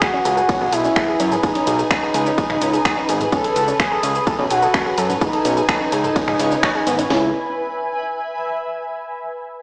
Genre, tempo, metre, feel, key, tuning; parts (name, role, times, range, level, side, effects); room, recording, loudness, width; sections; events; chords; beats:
melodic techno; 127 BPM; 4/4; straight; C# minor; A4 = 439 Hz
expressive portamento lead; melody; 0.0-7.3 s; D#4 to A4; -20 LUFS; equal; chorus, sidechain pumping, digital delay
analog pluck; arpeggios; 0.0-7.3 s; B3 to C#5; -23 LUFS; equal; chorus, sidechain pumping, digital delay
house drum kit; drums; 0.0-7.2 s; hi-hat, kick drum, snare drum; -22 LUFS; equal; overdrive
house drum kit; drums; 0.0-7.1 s; finger snaps, hi-hat, ride cymbal, shaker, toms; -23 LUFS; equal; overdrive
granular cloud pad; texture; 0.0-9.0 s; B4 to G#5; -25 LUFS; equal; built-in reverb, sidechain pumping
fat analog bass; bass; 0.3-7.3 s; G#1 to F#2; -23 LUFS; equal; sidechain pumping
moderate lush hall reverb, RT60 2.4 s; played on a big sound system in a bare room, stone room reverb, small speaker sound; -16 LUFS; side -30 dB against mid
0.0-7.1 A section; 7.1-9.0 B section
drop 0.0-7.1
0.0 E; 3.3 F#madd9; 7.1 C#m
0.02 0.49 0.96 | 1.43 1.91 2.38 2.85 | 3.32 3.80 4.27 4.74 | 5.21 5.69 6.16 6.63 | 7.10 7.58 8.05 8.52